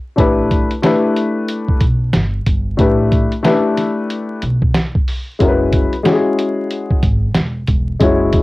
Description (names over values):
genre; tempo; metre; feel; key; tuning
hip hop, jazz-hop; 92 BPM; 4/4; swing 61% on 16ths; unclear; A4 = 440 Hz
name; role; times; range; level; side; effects
dark upright piano; accompaniment; 0.2-8.4 s; G#3 to C#5; -15 LUFS; left 2 dB; cassette tape, plate reverb
upright bass; bass; 0.2-8.4 s; E1 to B1; -19 LUFS; equal; none
lo-fi sampler-style drum kit; drums; 0.2-8.4 s; hi-hat, kick drum, snare drum; -16 LUFS; equal; none
room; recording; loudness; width
moderate booth ambience, RT60 0.2 s; home recording on cassette, vinyl crackle; -13 LUFS; side -20 dB against mid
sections
0.0-8.4 A section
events
none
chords
0.2 A9sus4; 5.4 F#9sus4